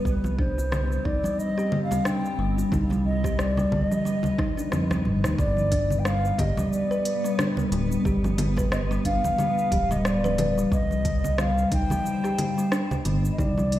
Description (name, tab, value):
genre	organic downtempo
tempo	90 BPM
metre	4/4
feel	swing 57% on 16ths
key	unclear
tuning	A4 = 440 Hz
part	granular cloud pad	sustained chords	0.0-13.8 s	G3 to C5	-32 LUFS	left 1 dB	built-in reverb, sidechain pumping
part	kalimba	arpeggios	0.0-13.7 s	D3 to B4	-28 LUFS	equal	tape echo
part	bronze singing bowl	texture	0.0-5.4 s	none	barely audible	none	none
part	bright bass bansuri	melody	0.1-13.8 s	B4 to G5	-29 LUFS	equal	tape echo
part	smooth synth bass	bass	0.1-13.8 s	D1 to F2	-26 LUFS	equal	tube saturation
part	deep house drum kit	drums	0.1-13.8 s	congas, hi-hat, rim click, shaker	-31 LUFS	left 1 dB	none
part	electronic kick drum	drums	0.1-13.5 s	none	-28 LUFS	equal	none
part	congas and bongos	percussion	0.2-13.7 s	none	-32 LUFS	right 2 dB	none
room	light reverb, studio ambience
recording	played on a big sound system in a bare room, stone room reverb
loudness	-22 LUFS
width	side -13 dB against mid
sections	0.0-5.4 A section; 5.4-13.8 B section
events	drum fill 4.4-5.4; kick drops out 4.7-5.4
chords	0.1 Cmadd9; 5.4 G; 10.7 Cmadd9